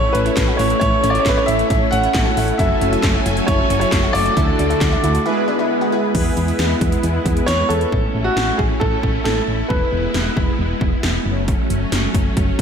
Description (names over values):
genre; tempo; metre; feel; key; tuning
synth-pop; 135 BPM; 4/4; straight; A major; A4 = 440 Hz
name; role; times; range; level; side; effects
warm baby grand piano; melody; 0.0-10.5 s; F#4 to F#5; -21 LUFS; right 1 dB; tape echo
analog synth brass; accompaniment; 0.0-7.9 s; G#3 to C#5; -22 LUFS; equal; chorus
string machine, violas; sustained chords; 0.0-12.6 s; D3 to G#5; -23 LUFS; equal; ensemble chorus
analog pluck; arpeggios; 0.0-6.1 s; C#4 to F#4; -26 LUFS; left 1 dB; chorus, tape echo
solid FM bass; bass; 0.0-12.6 s; E1 to E2; -22 LUFS; equal; none
80s electronic pad drums; drums; 0.1-12.6 s; crash cymbal, handclaps, hi-hat, kick drum, snare drum; -20 LUFS; equal; overdrive
room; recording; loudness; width
moderate lush hall reverb, RT60 1.9 s; dreamy mix soaked in reverb; -15 LUFS; side -7 dB against mid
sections
0.0-6.1 A section; 6.1-7.9 B section; 7.9-12.6 C section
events
silent gap 5.3-6.1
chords
0.0 A; 2.6 F#m7; 4.4 Dadd9; 5.3 E; 7.9 A; 9.7 E; 11.3 F#m